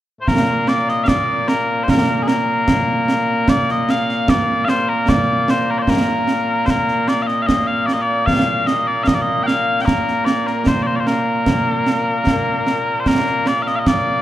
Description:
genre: scottish traditional, Scottish pipe music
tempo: 75 BPM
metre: 2/4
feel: straight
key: Bb major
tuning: A4 = 437 Hz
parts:
  - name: mellow small bagpipes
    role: melody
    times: 0.2-14.2 s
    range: Bb2 to G5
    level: -17 LUFS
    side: left 1 dB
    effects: none
  - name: concert snare drum and concert bass drum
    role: drums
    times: 0.3-14.1 s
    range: none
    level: -19 LUFS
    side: right 2 dB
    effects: none
room: moderate concert hall reverb, RT60 2.0 s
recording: none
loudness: -15 LUFS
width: side -13 dB against mid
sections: 0.3-13.1 A section; 13.1-14.2 A section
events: none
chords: none

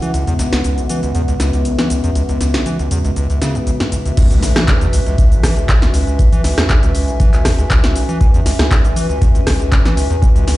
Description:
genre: acid house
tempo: 119 BPM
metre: 4/4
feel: swing 53% on 16ths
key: C# minor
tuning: A4 = 440 Hz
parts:
  - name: warm analog pad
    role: sustained chords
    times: 0.0-4.2 s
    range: C#3 to E4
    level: -23 LUFS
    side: left 2 dB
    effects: chorus, sidechain pumping
  - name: overdriven acid bass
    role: riff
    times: 0.0-10.6 s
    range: B1 to E3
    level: -16 LUFS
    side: equal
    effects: cassette tape, sidechain pumping, digital delay
  - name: punchy analog drum machine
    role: drums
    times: 0.0-10.6 s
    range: cabasa, crash cymbal, handclaps, hi-hat, rim click, snare drum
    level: -20 LUFS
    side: equal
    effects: none
  - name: warbly tape-like pad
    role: texture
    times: 0.0-10.6 s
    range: C#4 to G#5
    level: -23 LUFS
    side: equal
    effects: chorus, built-in reverb, sidechain pumping
  - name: electronic kick drum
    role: drums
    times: 4.2-10.3 s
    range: none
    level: -13 LUFS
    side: equal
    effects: none
  - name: impact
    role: sound effects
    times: 4.2-6.2 s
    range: none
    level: -23 LUFS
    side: equal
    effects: none
room: light reverb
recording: played on a big sound system in a bare room, large studio reverb, nothing above 10.6 kHz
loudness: -12 LUFS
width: side -17 dB against mid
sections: 0.0-4.2 A section; 4.2-10.6 B section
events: filter sweep on analog synth pad 0.0-4.2; drop 4.2-10.6; impact 4.2-6.2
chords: 0.0 C#m

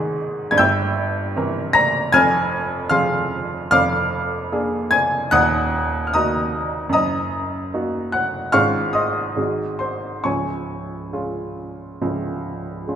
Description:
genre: classical, romantic character piece for solo piano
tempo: 67-79 BPM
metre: 4/4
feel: rubato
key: Db major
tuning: A4 = 442 Hz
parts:
  - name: clear upright piano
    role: solo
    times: 0.0-13.0 s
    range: Db1 to Bb6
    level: -18 LUFS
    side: equal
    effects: none
room: wet recital hall reverb, RT60 1.8 s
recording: minimal, uncompressed stereo recording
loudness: -18 LUFS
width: side -9 dB against mid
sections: 0.0-13.0 A section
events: none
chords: 0.0 Ab; 0.6 C7/G; 2.1 Fm; 3.7 Bb7/F; 5.3 Ebm; 6.9 Ebm/Gb; 8.5 Db/Ab; 9.4 Ab7; 10.3 Db

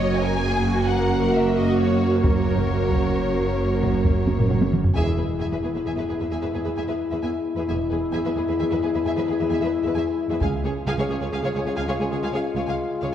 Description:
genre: cinematic, epic orchestral film score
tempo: 88 BPM (dotted quarters)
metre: 12/8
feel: straight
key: E major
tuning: A4 = 439 Hz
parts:
  - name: warm symphonic violin section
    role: melody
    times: 0.0-13.1 s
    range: B4 to G#5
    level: -32 LUFS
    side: left 3 dB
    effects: none
  - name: warm symphonic violin section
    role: second line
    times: 0.0-13.1 s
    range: F#4 to E#5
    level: -31 LUFS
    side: left 1 dB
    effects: none
  - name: warm chamber viola section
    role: accompaniment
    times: 0.0-13.1 s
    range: A#3 to G#4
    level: -29 LUFS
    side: right 2 dB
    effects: none
  - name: clear French horn section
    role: sustained chords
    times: 0.0-13.1 s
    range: G#3 to F#4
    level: -26 LUFS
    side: left 3 dB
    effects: none
  - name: rich studio double bass section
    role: bass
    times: 0.0-10.5 s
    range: E1 to C#2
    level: -28 LUFS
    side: right 2 dB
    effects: none
  - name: rich symphonic cello section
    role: bass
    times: 0.0-13.1 s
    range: C#2 to F#2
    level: -27 LUFS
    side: right 3 dB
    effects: none
  - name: taiko ensemble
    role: drums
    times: 2.2-5.8, 10.4-11.3 s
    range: none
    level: -23 LUFS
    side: equal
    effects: none
  - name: timpani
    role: percussion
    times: 5.0-5.6 s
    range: E2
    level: -29 LUFS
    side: equal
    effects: none
room: wet scoring stage reverb, RT60 1.7 s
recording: heard from further back in the room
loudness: -20 LUFS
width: side -10 dB against mid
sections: 0.0-5.0 A section; 5.0-13.1 B section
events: drum fill 4.3-5.0; band accent 5.0-5.4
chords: 0.0 F#; 5.0 E; 10.4 C#

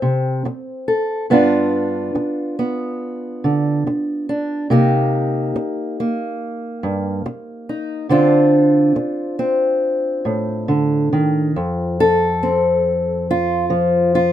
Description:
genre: folk, solo fingerstyle acoustic guitar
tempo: 70 BPM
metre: 4/4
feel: straight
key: F mixolydian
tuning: A4 = 440 Hz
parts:
  - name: fingerpicked old ladder-braced acoustic guitar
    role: solo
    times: 0.0-14.3 s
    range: F2 to A4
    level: -16 LUFS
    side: equal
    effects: none
room: light reverb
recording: minimal, uncompressed stereo recording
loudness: -16 LUFS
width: side -11 dB against mid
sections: 0.0-11.5 A section; 11.5-14.3 B section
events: none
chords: 0.0 F (rootless); 1.3 G7; 4.7 Cm7; 8.1 Dm7; 11.5 F

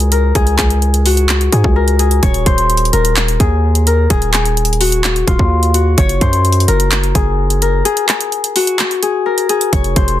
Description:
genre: hip hop, trap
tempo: 128 BPM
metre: 4/4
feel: half-time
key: unclear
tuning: A4 = 440 Hz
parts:
  - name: Celtic harp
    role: melody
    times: 0.0-10.2 s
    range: F4 to Db5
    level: -16 LUFS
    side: left 4 dB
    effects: tape echo
  - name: distorted 808-style bass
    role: bass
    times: 0.0-10.2 s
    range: Eb1 to Ab2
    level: -14 LUFS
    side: right 1 dB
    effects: distortion
  - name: trap drum kit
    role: drums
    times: 0.0-10.2 s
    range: handclaps, hi-hat, kick drum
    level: -15 LUFS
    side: right 1 dB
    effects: overdrive
room: digital ambience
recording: dense, heavily limited modern master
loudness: -11 LUFS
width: side -12 dB against mid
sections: 0.0-10.2 A section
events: break 7.9-9.7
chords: 0.0 Db5; 2.2 Ebmadd11; 6.0 Gbadd9

